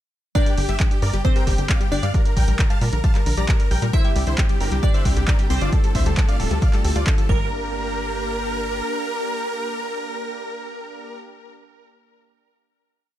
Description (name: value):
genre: uplifting trance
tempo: 134 BPM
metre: 4/4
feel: straight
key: G dorian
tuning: A4 = 440 Hz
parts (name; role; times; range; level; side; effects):
- glassy wavetable pluck; second line; 0.3-11.2 s; C4 to E5; -29 LUFS; left 1 dB; chorus, ping-pong delay
- big supersaw lead; melody; 0.4-11.2 s; E4 to Bb5; -27 LUFS; equal; sidechain pumping, ping-pong delay
- analog pluck; arpeggios; 0.4-7.7 s; D3 to G4; -30 LUFS; left 4 dB; chorus, sidechain pumping, ping-pong delay
- electronic kick drum; drums; 0.4-7.4 s; none; -19 LUFS; equal; none
- punchy analog drum machine; drums; 0.4-7.3 s; handclaps, hi-hat; -29 LUFS; right 1 dB; none
- tight sequencer bass; bass; 0.6-8.8 s; D1 to Bb2; -23 LUFS; equal; sidechain pumping
- lush unison pad; sustained chords; 3.9-11.2 s; C3 to G4; -32 LUFS; right 1 dB; chorus, sidechain pumping
room: digital ambience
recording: dark, warm production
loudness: -18 LUFS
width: side -13 dB against mid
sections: 0.4-7.5 drop; 7.5-11.1 final hit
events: drop 0.4-7.5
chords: 0.4 G5; 2.1 Bb; 3.9 Cadd9; 5.7 Dm7; 7.3 Gm